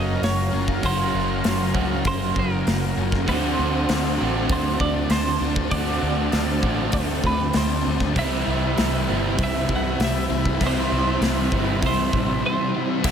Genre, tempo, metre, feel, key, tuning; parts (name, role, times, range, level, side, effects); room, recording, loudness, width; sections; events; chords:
rock, shoegaze and dream pop; 98 BPM; 4/4; straight; A4 = 443 Hz
twelve-string electric guitar; melody; 0.0-13.1 s; A4 to F#5; -28 LUFS; right 2 dB; phaser, tape echo
lush unison pad; sustained chords; 0.0-13.1 s; C4 to B5; -32 LUFS; equal; chorus
crunchy overdriven guitar; riff; 0.0-13.1 s; F#2 to F#4; -27 LUFS; right 11 dB; reverse reverb
thick fuzz guitar; riff; 0.0-13.1 s; F#2 to D4; -27 LUFS; left 9 dB; distortion, analog chorus
vintage muted fingered electric bass; bass; 0.0-13.1 s; F#1 to D2; -26 LUFS; equal
big rock drum kit; drums; 0.2-13.1 s; crash cymbal, hi-hat, kick drum, snare drum; -27 LUFS; equal
raw garage guitar; riff; 3.3-13.1 s; B2 to F#4; -30 LUFS; equal; overdrive
light reverb, small room ambience; -20 LUFS; side -8 dB against mid
0.0-13.1 A section
0.0 F#maj7; 3.3 D5; 8.2 Cmaj7